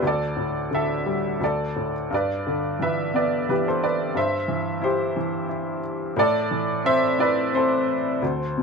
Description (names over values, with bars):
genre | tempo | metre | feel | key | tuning
classical, lyrical solo piano | 88 BPM | 3/4 | rubato | unclear | A4 = 440 Hz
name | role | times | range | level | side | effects
clear upright piano | solo | 0.0-8.6 s | D2 to E5 | -21 LUFS | equal | none
room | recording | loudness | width
light reverb | minimal, uncompressed stereo recording | -21 LUFS | side -4 dB against mid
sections
0.0-8.6 A section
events
none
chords
0.0 Dsus4; 1.4 D5; 2.1 G6; 4.2 C/G; 6.2 Am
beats
| 0.02 0.71 1.41 | 2.12 2.81 3.49 | 4.16 4.82 5.50 | 6.17 6.85 7.53 | 8.22